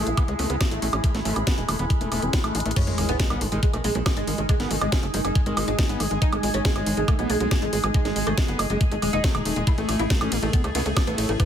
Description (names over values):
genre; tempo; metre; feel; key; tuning
psychedelic trance; 139 BPM; 4/4; straight; G# phrygian; A4 = 440 Hz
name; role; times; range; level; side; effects
overtone-sweeping drone; sustained chords; 0.0-11.5 s; G#3 to G#4; -33 LUFS; right 1 dB; chorus, built-in reverb, sidechain pumping
screaming distorted acid line; riff; 0.0-11.5 s; G#3 to E4; -31 LUFS; moving between left 7 dB and right 6 dB; distortion, chorus, auto-pan, sidechain pumping, dub echo
tight sequencer bass; bass; 0.0-11.4 s; D#1 to C#2; -27 LUFS; equal; none
ethereal airy pad; texture; 0.0-11.5 s; G#3 to B5; -32 LUFS; right 1 dB; ensemble chorus, built-in reverb, sidechain pumping
drum and bass drum kit; drums; 0.1-11.5 s; crash cymbal, hi-hat, ride cymbal, snare drum, woodblock; -29 LUFS; right 1 dB; studio reverb
electronic kick drum; drums; 0.2-11.5 s; none; -22 LUFS; equal; studio reverb
resonant blip pluck; second line; 0.4-1.4, 10.7-11.4 s; G#3 to C#4; -40 LUFS; right 3 dB; none
oud; melody; 2.8-11.5 s; D#3 to E4; -29 LUFS; equal; phaser, sidechain pumping, dub echo
sub drop; sound effects; 2.8-4.5 s; none; -32 LUFS; equal; none
room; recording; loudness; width
light reverb; none; -21 LUFS; side -9 dB against mid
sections
0.0-2.8 A section; 2.8-11.5 B section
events
drum fill 2.5; drop 2.8-11.5; impact 2.8-4.5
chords
0.0 A5; 2.8 G#5; 9.7 A5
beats
0.17 0.61 | 1.04 1.47 1.90 2.33 | 2.76 3.20 3.63 4.06 | 4.49 4.92 5.35 5.79 | 6.22 6.65 7.08 7.51 | 7.94 8.38 8.81 9.24 | 9.67 10.10 10.53 10.97 | 11.40